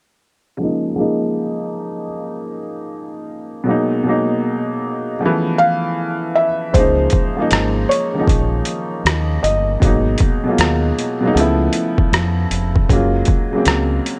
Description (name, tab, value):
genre	lo-fi hip hop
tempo	78 BPM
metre	4/4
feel	swing 65% on 16ths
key	Db major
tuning	A4 = 438 Hz
part	warm upright piano	accompaniment	0.6-14.2 s	Cb3 to F4	-21 LUFS	equal	cassette tape, low-pass filter
part	felt-muted upright piano	melody	5.6-9.8 s	C5 to F5	-21 LUFS	equal	none
part	deep dub fingered electric bass	bass	6.7-14.0 s	F1 to F2	-21 LUFS	equal	none
part	boom bap sampler-style drum kit	drums	6.7-14.2 s	hi-hat, kick drum, rim click	-20 LUFS	equal	overdrive
room	light reverb, studio reverb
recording	cassette tape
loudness	-17 LUFS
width	mono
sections	0.6-6.7 A section; 6.7-14.2 B section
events	filter sweep on upright piano 0.6-6.7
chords	0.6 Db69; 3.7 Abm9; 5.2 Db7alt; 6.7 Db69; 9.8 Abm9; 11.4 Db7alt; 12.9 Gbmaj9